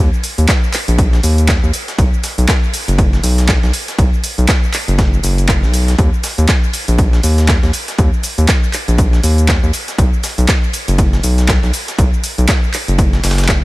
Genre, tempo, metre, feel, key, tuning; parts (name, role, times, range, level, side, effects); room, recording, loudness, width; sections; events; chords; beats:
deep house; 120 BPM; 4/4; swing 59% on 16ths; A4 = 440 Hz
round analog bass; bass; 0.0-13.6 s; F#1 to Eb2; -13 LUFS; equal; sidechain pumping
punchy analog drum machine; drums; 0.1-13.6 s; cabasa, handclaps, hi-hat; -19 LUFS; equal; overdrive
breakbeat sampler-style drum kit; drums; 0.2-13.6 s; ride cymbal, snare drum; -28 LUFS; right 1 dB
electronic kick drum; drums; 0.5-13.6 s; -13 LUFS; equal; overdrive
little or no reverb; -11 LUFS; side -20 dB against mid
0.0-13.6 A section
0.48 0.98 1.49 | 1.99 2.48 2.98 3.48 | 3.98 4.49 4.99 5.49 | 5.99 6.49 6.99 7.49 | 7.99 8.48 8.98 9.48 | 9.98 10.48 10.98 11.48 | 11.98 12.48 12.98 13.48